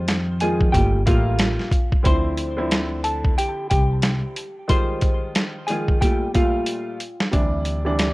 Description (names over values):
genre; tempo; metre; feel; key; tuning
hip hop, boom-bap hip-hop; 91 BPM; 4/4; swing 61% on 16ths; D minor; A4 = 440 Hz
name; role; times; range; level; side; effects
semi-hollow electric guitar; melody; 0.0-7.3 s; F4 to C6; -26 LUFS; equal; analog chorus, high-pass filter, low-pass filter, ping-pong delay
dark baby grand piano; accompaniment; 0.0-8.1 s; Bb2 to F4; -25 LUFS; equal; high-pass filter, low-pass filter
upright bass; bass; 0.0-8.1 s; G1 to F2; -23 LUFS; equal; tube saturation
boom bap sampler-style drum kit; drums; 0.1-8.1 s; hi-hat, kick drum, snare drum; -20 LUFS; equal; none
room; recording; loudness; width
studio reverb; worn, warbling old tape, cassette tape, warbly pitch drift; -18 LUFS; side -20 dB against mid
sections
0.0-7.3 A section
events
drum fill 6.7-7.3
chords
0.0 Fm9; 0.7 Gm9; 2.1 Dm9; 4.7 Fm9; 6.0 Gm9; 7.3 D9sus4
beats
0.08 0.74 1.40 | 2.06 2.72 3.38 4.04 | 4.70 5.36 6.01 6.67 | 7.33 7.99